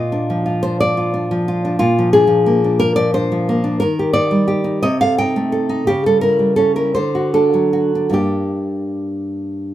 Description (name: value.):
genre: romantic piece for solo classical guitar.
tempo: 47-61 BPM (dotted quarters).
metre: 6/8.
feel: rubato.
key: unclear.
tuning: A4 = 440 Hz.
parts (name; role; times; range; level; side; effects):
nylon-string guitar; solo; 0.0-9.7 s; G2 to G5; -14 LUFS; equal; none.
room: moderate studio reverb, RT60 0.6 s.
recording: band playing live in one room.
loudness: -14 LUFS.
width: side -13 dB against mid.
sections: 0.0-9.7 A section.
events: none.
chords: 0.0 Bb; 3.8 Eb; 4.8 Am7b5/C; 5.9 C#dim; 7.0 D; 8.2 Gm.